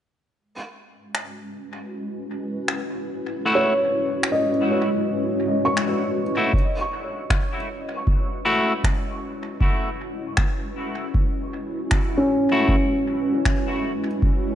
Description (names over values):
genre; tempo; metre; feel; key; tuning
ambient dub; 78 BPM; 4/4; swing 57% on 16ths; unclear; A4 = 439 Hz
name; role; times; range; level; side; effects
granular cloud pad; sustained chords; 1.3-14.6 s; G#3 to B4; -27 LUFS; left 1 dB; built-in reverb
finger snaps; drums; 1.1-13.6 s; none; -28 LUFS; left 1 dB; dub echo
clean electric guitar; stabs; 3.5-12.7 s; A3 to F#4; -26 LUFS; left 1 dB; dub echo
felt-muted upright piano; arpeggios; 3.6-14.6 s; C#4 to C#6; -24 LUFS; right 1 dB; dub echo
electronic kick drum; drums; 6.5-14.4 s; none; -21 LUFS; equal; none
room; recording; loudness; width
light reverb, small room ambience; nothing above 11.0 kHz; -20 LUFS; side -11 dB against mid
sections
0.4-6.5 A section; 6.5-14.6 B section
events
fade-in on ambient pad 0.4-6.5, 6.5-14.6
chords
0.4 F#7(no3)